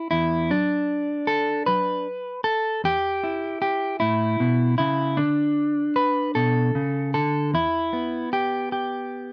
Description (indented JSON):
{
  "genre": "folk, solo fingerstyle acoustic guitar",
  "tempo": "51 BPM (dotted quarters)",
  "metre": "6/8",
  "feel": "straight",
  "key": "unclear",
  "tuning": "A4 = 441 Hz",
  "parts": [
    { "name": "clean electric guitar", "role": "solo", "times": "0.0-9.3 s", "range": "E2 to B4", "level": "-24 LUFS", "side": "equal", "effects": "none" }
  ],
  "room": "light reverb",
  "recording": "none",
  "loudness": "-24 LUFS",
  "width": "mono",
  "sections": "0.0-9.3 A section",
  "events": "none",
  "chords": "0.0 N.C.; 2.8 A/E; 5.2 D5; 7.5 Em",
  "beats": "| 0.51 1.68 | 2.84 4.01 | 5.18 6.35 | 7.53 8.70"
}